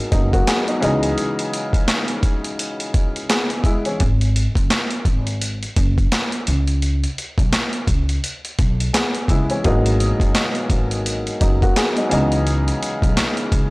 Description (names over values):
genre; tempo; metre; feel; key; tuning
hip hop, boom-bap hip-hop; 85 BPM; 4/4; swing 59% on 16ths; unclear; A4 = 440 Hz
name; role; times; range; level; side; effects
warm upright piano; accompaniment; 0.0-4.0, 8.9-13.7 s; B2 to G#4; -21 LUFS; left 1 dB; cassette tape, high-pass filter, low-pass filter
upright bass; bass; 0.1-13.7 s; F#1 to C#2; -20 LUFS; equal; tube saturation
boom bap sampler-style drum kit; drums; 0.1-13.7 s; handclaps, hi-hat, kick drum, snare drum; -20 LUFS; equal; none
room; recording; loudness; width
small room ambience; dry, gritty hardware recording, cassette tape; -17 LUFS; side -24 dB against mid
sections
0.0-13.7 A section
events
break 1.2-4.0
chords
0.0 G#m9; 0.8 C#m9; 4.0 F#sus2; 6.5 Bsus24; 9.7 G#m9; 12.1 C#m9